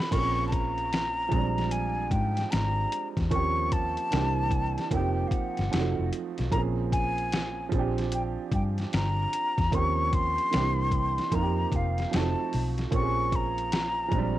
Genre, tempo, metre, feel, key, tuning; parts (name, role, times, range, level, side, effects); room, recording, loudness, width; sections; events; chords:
R&B, neo-soul; 75 BPM; 4/4; swing 63% on 16ths; Bb dorian; A4 = 440 Hz
breathy mellow silver concert flute; melody; 0.0-14.4 s; F5 to Db6; -30 LUFS; left 2 dB; cassette tape
warm upright piano; accompaniment; 0.0-14.4 s; D3 to Ab4; -32 LUFS; right 8 dB
boom bap sampler-style drum kit; drums; 0.0-14.4 s; crash cymbal, hi-hat, kick drum, snare drum; -30 LUFS; left 1 dB
vintage muted fingered electric bass; bass; 0.1-14.4 s; F1 to Ab2; -30 LUFS; left 1 dB
light reverb; home recording on cassette; -25 LUFS; side -14 dB against mid
0.1-14.4 A section
0.1 Bbm9; 1.3 Bb13; 3.3 Eb13; 4.1 C9; 4.9 F9sus4; 5.7 F7b9; 6.5 Bbm9; 7.7 Bb13; 9.7 Eb13; 10.5 C9; 11.3 F9sus4; 12.1 F7b9; 12.9 Bbm9